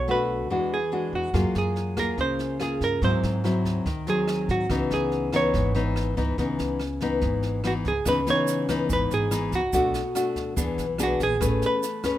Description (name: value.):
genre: bossa nova.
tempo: 143 BPM.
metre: 4/4.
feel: straight.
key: C# minor.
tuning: A4 = 440 Hz.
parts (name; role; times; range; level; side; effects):
hollow-body jazz guitar; melody; 0.0-12.2 s; F#4 to C#5; -27 LUFS; right 2 dB; none.
nylon-string guitar; accompaniment; 0.0-12.2 s; G#2 to B4; -25 LUFS; left 2 dB; none.
upright bass; bass; 0.0-11.6 s; G#1 to G#2; -30 LUFS; right 1 dB; none.
jazz brush drum kit; drums; 1.3-12.1 s; kick drum, rim click, snare drum; -34 LUFS; right 1 dB; none.
tube shaker; percussion; 8.1-12.2 s; none; -36 LUFS; right 11 dB; none.
room: little or no reverb.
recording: minimal, uncompressed stereo recording.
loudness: -22 LUFS.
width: side -13 dB against mid.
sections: 0.0-8.1 A section; 8.1-12.2 B section.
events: none.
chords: 0.0 Bm7; 0.5 E9; 1.3 F#maj9; 3.0 G#7b13; 4.7 C#m9; 9.7 Bm7; 10.6 E7; 11.4 Amaj9.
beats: 0.08 0.50 0.92 | 1.34 1.76 2.18 2.60 | 3.02 3.44 3.86 4.28 | 4.70 5.12 5.54 5.96 | 6.38 6.80 7.22 7.64 | 8.06 8.48 8.90 9.32 | 9.74 10.16 10.58 10.99 | 11.41 11.83.